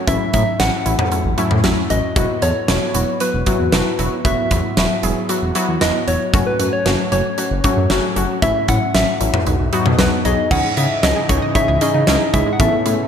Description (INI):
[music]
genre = synth-pop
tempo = 115 BPM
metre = 4/4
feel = straight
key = unclear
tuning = A4 = 441 Hz
[part]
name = soft struck synth lead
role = melody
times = 0.0-13.1 s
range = B4 to F#5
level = -21 LUFS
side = equal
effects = chorus, ping-pong delay
[part]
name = warbly dusty pluck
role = accompaniment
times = 0.1-13.0 s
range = F#3 to A4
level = -20 LUFS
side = left 2 dB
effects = chorus
[part]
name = smooth synth bass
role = bass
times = 0.1-13.0 s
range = E1 to C#3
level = -20 LUFS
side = equal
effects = none
[part]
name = huge arena drum kit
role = drums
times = 0.1-13.0 s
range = crash cymbal, hi-hat, kick drum, snare drum, toms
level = -20 LUFS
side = equal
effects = none
[part]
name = chorused pulse-width pad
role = sustained chords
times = 10.5-13.1 s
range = B2 to D#4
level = -25 LUFS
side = right 2 dB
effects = none
[part]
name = analog pluck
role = arpeggios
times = 10.5-12.8 s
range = E3 to D#5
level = -26 LUFS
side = right 4 dB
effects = chorus, ping-pong delay
[sound]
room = moderate lush hall reverb, RT60 2.2 s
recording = bright 1980s-style digital production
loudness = -14 LUFS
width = side -8 dB against mid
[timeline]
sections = 0.0-10.5 A section; 10.5-13.1 B section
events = none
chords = 0.1 A6; 2.2 Esus2; 6.3 F#m; 8.4 A6; 9.5 B; 10.5 C#madd9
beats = | 0.07 0.60 1.12 1.64 | 2.16 2.68 3.21 3.73 | 4.25 4.77 5.29 5.82 | 6.34 6.86 7.38 7.90 | 8.42 8.95 9.47 9.99 | 10.51 11.03 11.55 12.07 | 12.60